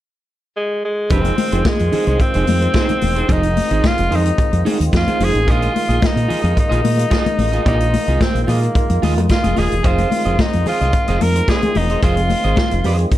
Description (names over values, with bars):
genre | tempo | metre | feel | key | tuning
disco | 110 BPM | 4/4 | straight | F minor | A4 = 440 Hz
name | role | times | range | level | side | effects
bright tenor saxophone | melody | 0.6-13.1 s | Ab3 to Bb4 | -20 LUFS | equal | none
electric guitar at the edge of break-up | accompaniment | 1.1-13.1 s | Eb4 to Eb5 | -24 LUFS | right 4 dB | none
percussive tonewheel organ | sustained chords | 1.1-13.2 s | Eb3 to F4 | -26 LUFS | equal | overdrive, chorus vibrato, slow rotary speaker
fingered electric bass | bass | 1.1-13.1 s | Eb1 to Bb2 | -17 LUFS | equal | none
vintage drum kit | drums | 1.1-13.2 s | hi-hat, kick drum, snare drum | -19 LUFS | equal | none
congas | percussion | 1.1-13.0 s | none | -24 LUFS | left 5 dB | none
room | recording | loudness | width
light reverb, small room ambience | dark, warm production | -14 LUFS | side -14 dB against mid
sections
0.0-1.1 A section; 1.1-13.2 B section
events
none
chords
0.0 N.C.; 1.1 Fm7; 5.5 Bb7sus4; 9.8 Fm7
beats
0.01 0.56 | 1.10 1.65 2.20 2.74 | 3.29 3.84 4.38 4.93 | 5.48 6.02 6.57 7.12 | 7.66 8.21 8.75 9.30 | 9.85 10.39 10.94 11.48 | 12.03 12.57 13.12